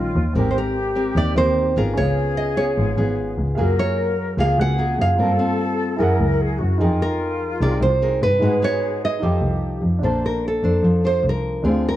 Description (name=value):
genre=bossa nova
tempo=149 BPM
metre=4/4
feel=straight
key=unclear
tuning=A4 = 440 Hz
part: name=nylon-string guitar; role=melody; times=0.0-12.0 s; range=A4 to Gb5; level=-22 LUFS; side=right 2 dB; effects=none
part: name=mellow small flute group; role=second line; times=0.0-9.8 s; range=F4 to Bb4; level=-27 LUFS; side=left 3 dB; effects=none
part: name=nylon-string guitar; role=accompaniment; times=0.0-12.0 s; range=Ab2 to C5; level=-25 LUFS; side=left 2 dB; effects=none
part: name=warm baby grand piano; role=accompaniment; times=0.0-12.0 s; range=Bb3 to Gb6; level=-29 LUFS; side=right 3 dB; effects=none
part: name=clear double bass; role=bass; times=0.0-12.0 s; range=Ab1 to Ab2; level=-21 LUFS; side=equal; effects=none
room=light reverb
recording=worn, warbling old tape, cassette tape, warbly pitch drift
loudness=-17 LUFS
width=side -13 dB against mid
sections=0.0-10.0 A section; 10.0-12.0 B section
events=nylon-string guitar solo 10.0-12.0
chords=0.4 Abmaj9; 2.0 Db7; 3.6 Gbmaj9; 5.2 Gm11; 6.0 Gb9; 6.8 Fm11; 8.4 Abm7; 9.2 F13; 10.0 Bbmaj9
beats=| 0.35 0.76 1.16 1.56 | 1.97 2.37 2.77 3.18 | 3.58 3.98 4.39 4.79 | 5.19 5.59 6.00 6.40 | 6.80 7.21 7.61 8.01 | 8.42 8.82 9.22 9.63 | 10.03 10.44 10.84 11.24 | 11.65